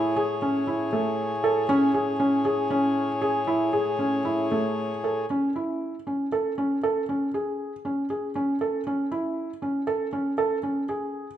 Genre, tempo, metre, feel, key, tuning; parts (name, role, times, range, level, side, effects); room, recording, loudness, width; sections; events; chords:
contemporary instrumental, chamber music in an uneven meter; 118 BPM; 7/4; straight; A major; A4 = 440 Hz
pedal harmonium; sustained chords; 0.0-5.3 s; A2 to C#5; -28 LUFS; left 2 dB
felt-muted upright piano; arpeggios; 0.0-11.3 s; A3 to A4; -24 LUFS; right 1 dB
wet recital hall reverb, RT60 1.5 s; -23 LUFS; side -11 dB against mid
0.0-5.3 A section; 5.3-11.4 B section
0.0 Amaj7